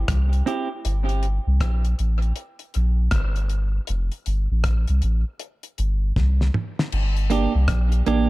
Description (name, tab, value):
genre	dub reggae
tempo	79 BPM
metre	4/4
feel	swing 63% on 16ths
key	G dorian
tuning	A4 = 445 Hz
part	soft dub sub bass	bass	0.0-8.3 s	F1 to C2	-20 LUFS	equal	none
part	damped 70s drum kit	drums	0.1-8.3 s	crash cymbal, hi-hat, kick drum, rim click, snare drum, toms	-26 LUFS	equal	none
part	clean electric guitar	accompaniment	0.5-0.7, 7.3-8.3 s	Bb3 to G4	-25 LUFS	right 5 dB	low-pass filter, tape echo
room	studio reverb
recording	dark, warm production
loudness	-20 LUFS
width	side -19 dB against mid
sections	0.0-6.9 A section; 6.9-8.3 B section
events	drum fill 6.2-6.9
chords	0.0 C; 0.8 Gm; 3.9 F; 5.4 C5; 6.9 Gm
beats	0.08 | 0.84 1.60 2.36 3.12 | 3.88 4.64 5.40 6.16 | 6.92 7.68